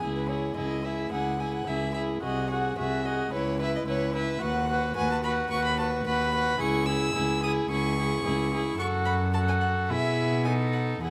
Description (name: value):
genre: quick classical-period movement for string quartet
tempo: 109 BPM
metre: 4/4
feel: straight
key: unclear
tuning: A4 = 440 Hz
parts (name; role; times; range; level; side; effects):
- warm violin; second line; 0.0-11.1 s; G#4 to B4; -35 LUFS; equal; none
- rich viola; accompaniment; 0.0-11.1 s; D#4 to F#4; -33 LUFS; equal; none
- rich cello; bass; 0.0-11.1 s; B#1 to B2; -32 LUFS; equal; none
- warm violin; melody; 0.2-11.1 s; B4 to E6; -35 LUFS; equal; none
room: moderate scoring stage reverb, RT60 2.0 s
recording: close, detailed microphones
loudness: -27 LUFS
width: mono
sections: 0.0-11.1 A section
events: none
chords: 0.0 C#m; 2.2 G#7/B#; 3.3 C#m7; 4.4 B/D#; 6.6 C#m; 8.8 F#m; 9.9 E/B; 10.5 B7